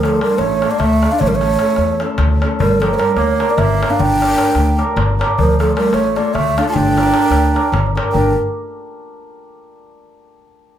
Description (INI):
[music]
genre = balkan folk, Balkan wedding band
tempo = 303 BPM (eighths)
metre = 7/8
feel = straight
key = G dorian sharp4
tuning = A4 = 440 Hz
[part]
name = breathy mellow ney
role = melody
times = 0.0-8.3 s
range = A4 to A5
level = -18 LUFS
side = right 2 dB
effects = none
[part]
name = warm clarinet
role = second line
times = 0.0-8.3 s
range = F3 to F4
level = -20 LUFS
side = right 3 dB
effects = none
[part]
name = cimbalom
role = accompaniment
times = 0.0-8.3 s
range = A3 to Bb4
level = -20 LUFS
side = equal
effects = none
[part]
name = upright bass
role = bass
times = 0.0-8.3 s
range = G1 to E2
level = -18 LUFS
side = left 1 dB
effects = none
[part]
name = darbuka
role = percussion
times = 0.0-8.3 s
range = none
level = -22 LUFS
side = left 3 dB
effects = none
[sound]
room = wet studio reverb, RT60 0.6 s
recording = heard from further back in the room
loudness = -13 LUFS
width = side -10 dB against mid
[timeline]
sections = 0.0-8.1 A section; 8.1-9.5 B section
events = none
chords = 0.0 Dm; 1.2 A; 2.6 Gm; 5.4 Dm; 6.8 Gm